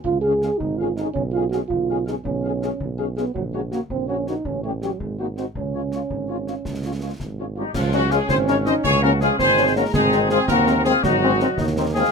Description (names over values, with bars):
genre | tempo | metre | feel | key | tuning
military-style march for wind band | 109 BPM (dotted quarters) | 6/8 | straight | Db major | A4 = 440 Hz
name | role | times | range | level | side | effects
mellow euphonium | second line | 0.0-12.1 s | F3 to Ab4 | -24 LUFS | right 4 dB | none
warm tuba | bass | 0.0-12.0 s | Ab1 to Eb2 | -25 LUFS | right 3 dB | none
concert bass drum, concert snare drum and clash cymbals | drums | 0.0-12.1 s | none | -30 LUFS | left 1 dB | none
warm trumpet section | melody | 0.2-12.1 s | F4 to F5 | -25 LUFS | left 3 dB | none
warm French horn section | accompaniment | 0.3-12.0 s | Eb3 to Ab4 | -25 LUFS | left 6 dB | none
bright small flute group | second line | 7.6-12.1 s | Db4 to C5 | -22 LUFS | left 5 dB | none
mellow trombone section | sustained chords | 7.7-12.1 s | Ab3 to Eb4 | -26 LUFS | equal | none
room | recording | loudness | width
little or no reverb | close, detailed microphones | -19 LUFS | side -5 dB against mid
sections
0.0-7.7 A section; 7.7-12.1 A section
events
none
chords
0.1 Db; 1.2 Db7/Cb; 3.4 Gb/Bb; 4.5 A7; 5.0 Ab7; 5.6 Db; 9.9 Ab7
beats
| 0.05 0.60 | 1.15 1.70 | 2.25 2.80 | 3.35 3.90 | 4.45 5.00 | 5.55 6.10 | 6.65 7.20 | 7.75 8.30 | 8.84 9.39 | 9.94 10.49 | 11.04 11.58